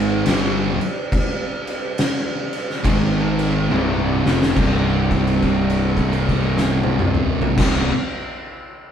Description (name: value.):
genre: stoner and doom metal.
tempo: 70 BPM.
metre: 4/4.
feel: swing 63% on 8ths.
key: C minor.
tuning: A4 = 440 Hz.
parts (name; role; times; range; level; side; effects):
string machine, cellos; sustained chords; 0.0-7.9 s; Ab3 to D5; -32 LUFS; equal; none.
fuzz guitar; riff; 0.0-7.9 s; C2 to Ab3; -24 LUFS; left 6 dB; distortion.
overdriven semi-hollow guitar; riff; 0.0-7.9 s; C2 to Ab3; -24 LUFS; left 2 dB; none.
thick fuzz guitar; riff; 0.0-7.9 s; C2 to Ab3; -22 LUFS; right 5 dB; distortion.
fuzz picked electric bass; bass; 0.0-7.9 s; C1 to Ab1; -25 LUFS; equal; overdrive.
oversized low-tuned drum kit; drums; 0.3-7.8 s; crash cymbal, kick drum, snare drum, toms; -22 LUFS; equal; none.
room: moderate stone room reverb, RT60 1.3 s.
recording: band playing live in one room.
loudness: -17 LUFS.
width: side -8 dB against mid.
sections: 0.0-4.6 A section; 4.6-8.0 B section.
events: drum fill 3.7-4.6; held note 4.6-7.5.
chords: 0.3 C5; 2.8 Ab5; 3.7 C5.